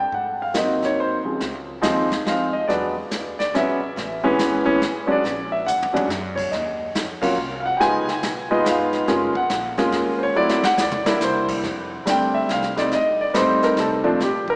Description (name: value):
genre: jazz piano trio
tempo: 141 BPM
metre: 3/4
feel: swing 65% on 8ths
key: unclear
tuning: A4 = 441 Hz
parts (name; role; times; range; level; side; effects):
- warm grand piano; melody; 0.0-14.6 s; Db2 to Ab5; -22 LUFS; equal; none
- upright bass; bass; 0.0-14.6 s; F1 to Ab2; -41 LUFS; equal; none
- vintage brush drum kit; drums; 0.1-14.6 s; brushed snare drum, crash cymbal, hi-hat, kick drum, snare drum, toms; -31 LUFS; equal; none
room: wet church reverb, RT60 3.5 s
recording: recorded in a church or concert hall, small speaker sound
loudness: -21 LUFS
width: mono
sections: 0.0-1.4 A section; 1.4-11.6 B section; 11.6-14.6 C section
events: drum fill 5.7-6.1, 10.4-11.2; band accent 7.2; grand piano solo 11.6-14.6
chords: 0.1 Ab7; 1.4 Dbmaj7; 2.7 E9; 4.0 Amaj9; 5.2 Bbaug; 6.5 Ebmadd9; 7.8 Db9; 9.1 Gbmaj9; 10.4 D9; 11.2 C7; 11.6 F6; 12.9 F7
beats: | 0.12 0.54 0.97 | 1.40 1.82 2.25 | 2.67 3.10 3.53 | 3.95 4.38 4.81 | 5.23 5.66 6.09 | 6.51 6.94 7.37 | 7.79 8.22 8.65 | 9.07 9.50 9.93 | 10.35 10.78 11.21 | 11.63 12.06 12.49 | 12.92 13.34 13.77 | 14.20